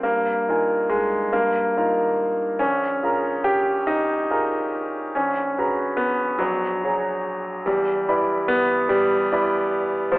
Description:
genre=classical, impressionist solo piano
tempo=47 BPM (dotted quarters)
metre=6/8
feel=rubato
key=unclear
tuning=A4 = 440 Hz
part: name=clear concert grand piano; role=solo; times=0.0-10.2 s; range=Bb1 to B5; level=-19 LUFS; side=equal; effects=none
room=moderate concert hall reverb, RT60 2.3 s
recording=telephone sound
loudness=-19 LUFS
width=side -21 dB against mid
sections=0.0-10.2 A section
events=none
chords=0.0 Fm11/G; 1.3 Ebadd9/G; 2.6 Bbm7; 5.2 Abm11/Bb; 6.4 Gbadd9/Bb; 7.7 Em7

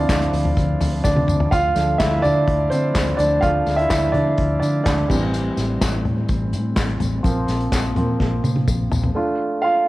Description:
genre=piano-driven pop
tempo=126 BPM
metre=4/4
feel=straight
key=D minor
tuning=A4 = 439 Hz
part: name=warm baby grand piano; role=accompaniment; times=0.0-9.9 s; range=E3 to F5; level=-20 LUFS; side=right 1 dB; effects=cassette tape
part: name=mellow tonewheel organ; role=sustained chords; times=0.0-9.1 s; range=D3 to C4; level=-28 LUFS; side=left 1 dB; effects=chorus vibrato, fast rotary speaker, cassette tape
part: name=vintage muted fingered electric bass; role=bass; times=0.0-9.1 s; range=A1 to D3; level=-23 LUFS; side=equal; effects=none
part: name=unplugged drum kit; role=drums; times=0.1-9.1 s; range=crash cymbal, handclaps, hi-hat, kick drum, snare drum, toms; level=-23 LUFS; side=equal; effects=cassette tape
part: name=tambourine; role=percussion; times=0.1-9.0 s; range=none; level=-37 LUFS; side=left 6 dB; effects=none
room=light reverb, studio reverb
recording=home recording on cassette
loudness=-17 LUFS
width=side -17 dB against mid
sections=0.0-1.5 A section; 1.5-9.2 B section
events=grand piano solo 0.0-1.5, 1.5-9.2; drum fill 1.0-1.5, 8.2-9.2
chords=0.0 Dm7; 1.5 Dm; 5.1 Am7; 7.2 Bbsus2; 9.2 Dm

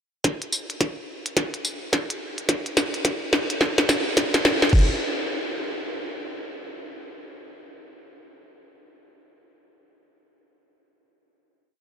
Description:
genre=glitch hop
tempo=107 BPM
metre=4/4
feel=swing 62% on 16ths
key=none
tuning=none
part: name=electronic kick drum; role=drums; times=0.2-4.9 s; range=none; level=-21 LUFS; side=equal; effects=overdrive, high-pass filter on kick
part: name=glitchy drum kit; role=drums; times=0.2-4.9 s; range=crash cymbal, hi-hat, snare drum, tambourine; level=-23 LUFS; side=equal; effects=none
room=wet huge ambient reverb, RT60 7.7 s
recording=dreamy mix soaked in reverb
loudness=-21 LUFS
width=side -8 dB against mid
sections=0.2-4.7 build; 4.7-7.0 final hit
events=build-up 0.2-4.7; drum fill 0.2-4.7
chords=none

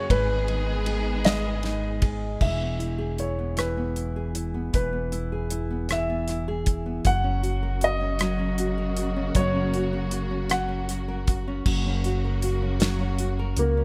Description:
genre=six-eight pop ballad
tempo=52 BPM (dotted quarters)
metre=6/8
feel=straight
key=unclear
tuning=A4 = 441 Hz
part: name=warm concert grand piano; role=melody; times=0.0-13.8 s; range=A#3 to F#5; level=-31 LUFS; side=equal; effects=none
part: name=nylon-string guitar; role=accompaniment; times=0.0-13.8 s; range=G#2 to A#4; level=-33 LUFS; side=equal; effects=none
part: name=warm studio string section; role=sustained chords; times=0.0-2.4, 7.1-13.8 s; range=C#3 to G#4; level=-36 LUFS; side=equal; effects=none
part: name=upright bass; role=bass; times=0.0-13.8 s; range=E1 to C#2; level=-31 LUFS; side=equal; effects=none
part: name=damped 70s drum kit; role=drums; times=0.1-13.7 s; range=crash cymbal, hi-hat, kick drum, ride cymbal, rim click, snare drum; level=-28 LUFS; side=equal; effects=none
room=little or no reverb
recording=none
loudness=-26 LUFS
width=mono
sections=0.0-2.4 A section; 2.4-11.7 B section; 11.7-13.8 C section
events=none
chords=0.1 G#m; 2.4 E; 7.1 F#

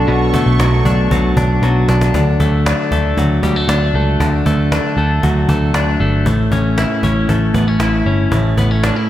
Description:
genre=jangly indie pop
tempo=116 BPM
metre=4/4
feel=straight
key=unclear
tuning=A4 = 438 Hz
part: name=warm analog pad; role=sustained chords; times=0.0-2.1 s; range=D4 to C#6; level=-23 LUFS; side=right 4 dB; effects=chorus
part: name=twelve-string electric guitar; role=arpeggios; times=0.0-9.1 s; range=A2 to E4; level=-16 LUFS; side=left 2 dB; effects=analog delay, slapback echo
part: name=vintage muted picked electric bass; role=bass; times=0.0-8.9 s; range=G1 to D2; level=-15 LUFS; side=right 1 dB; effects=none
part: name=cajon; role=drums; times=0.3-9.0 s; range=none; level=-22 LUFS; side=equal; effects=none
room=moderate lush hall reverb, RT60 1.9 s, digital ambience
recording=big arena sound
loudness=-12 LUFS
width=side -13 dB against mid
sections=0.0-2.1 A section; 2.1-9.1 B section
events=drum fill 1.6-2.1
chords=0.0 Bm7; 2.1 D; 6.3 A

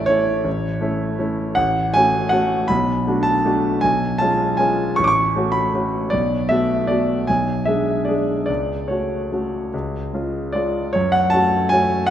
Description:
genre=classical, piano waltz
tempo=141-168 BPM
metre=3/4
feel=rubato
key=F# minor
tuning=A4 = 438 Hz
part: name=warm grand piano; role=solo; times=0.0-12.1 s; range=A1 to D6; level=-17 LUFS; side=equal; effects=none
room=moderate concert hall reverb, RT60 2.3 s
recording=none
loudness=-17 LUFS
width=side -10 dB against mid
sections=0.0-11.0 A section; 11.0-12.1 B section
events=none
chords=0.0 A; 1.6 F#m/A; 2.7 Bm7; 3.8 C#7/B; 5.0 F#m/A; 6.1 Bm7; 7.3 G#dim/B; 8.5 F#m/C#; 9.7 C#; 11.0 F#m

